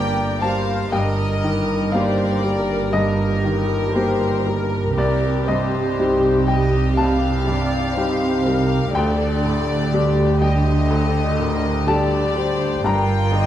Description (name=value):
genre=cinematic, emotional film score for orchestra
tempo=60 BPM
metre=4/4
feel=rubato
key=unclear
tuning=A4 = 440 Hz
part: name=rich studio violin section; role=melody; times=0.0-13.5 s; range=F4 to Bb4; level=-31 LUFS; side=left 4 dB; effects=none
part: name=warm symphonic violin section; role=second line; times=0.0-13.5 s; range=Bb4 to G5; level=-26 LUFS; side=left 3 dB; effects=none
part: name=clear baby grand piano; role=accompaniment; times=0.0-13.5 s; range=C2 to Bb5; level=-22 LUFS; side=left 2 dB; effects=none
part: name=dark symphonic viola section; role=accompaniment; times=0.0-13.5 s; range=G4 to Eb5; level=-27 LUFS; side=equal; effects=none
part: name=dark chamber cello section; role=bass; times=0.0-13.5 s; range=G2 to D3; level=-24 LUFS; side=right 2 dB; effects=none
part: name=rich symphonic double bass section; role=bass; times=0.0-13.5 s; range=G1 to D2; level=-24 LUFS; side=right 2 dB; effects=none
room=moderate recital hall reverb, RT60 1.3 s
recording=dark, warm production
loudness=-17 LUFS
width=side -11 dB against mid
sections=0.0-13.5 A section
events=none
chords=0.0 Gm; 0.9 Eb/G; 5.0 Cm; 8.9 Dsus4; 12.8 Gm7